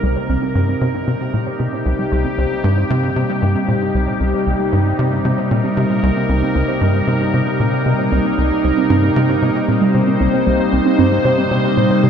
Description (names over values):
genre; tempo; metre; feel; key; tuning
ambient, sequencer-driven space music; 115 BPM; 4/4; straight; C minor; A4 = 440 Hz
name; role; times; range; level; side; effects
evolving wavetable pad; sustained chords; 0.0-12.1 s; C3 to C5; -17 LUFS; equal; chorus, built-in reverb
warbly dusty pluck; arpeggios; 0.0-12.1 s; C3 to C5; -23 LUFS; right 4 dB; chorus, auto-pan, tape echo
tight sequencer bass; riff; 0.0-12.1 s; C2 to C3; -18 LUFS; equal; wide subtle chorus, tape echo
room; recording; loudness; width
wet echo chamber reverb, RT60 2.6 s; echo-heavy mix; -14 LUFS; side -7 dB against mid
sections
0.0-12.1 A section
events
none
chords
0.0 Cm7